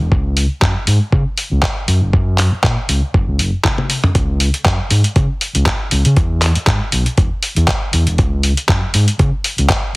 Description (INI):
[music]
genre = nu-disco, nu disco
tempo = 119 BPM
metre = 4/4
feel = swing 55% on 16ths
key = C# dorian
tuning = A4 = 439 Hz
[part]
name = overdriven fingered electric bass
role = bass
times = 0.0-9.7 s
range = E1 to C#3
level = -15 LUFS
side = equal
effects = sidechain pumping
[part]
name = electronic kick drum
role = drums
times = 0.1-9.8 s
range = none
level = -16 LUFS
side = equal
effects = studio reverb
[part]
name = dusty soul sampler-style drum kit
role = drums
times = 0.4-9.8 s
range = handclaps, hi-hat, toms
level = -18 LUFS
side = equal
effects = studio reverb
[sound]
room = little or no reverb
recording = heavily compressed radio sound, multiband compression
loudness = -13 LUFS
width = side -25 dB against mid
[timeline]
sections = 0.0-10.0 A section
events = drum fill 3.6-4.2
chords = none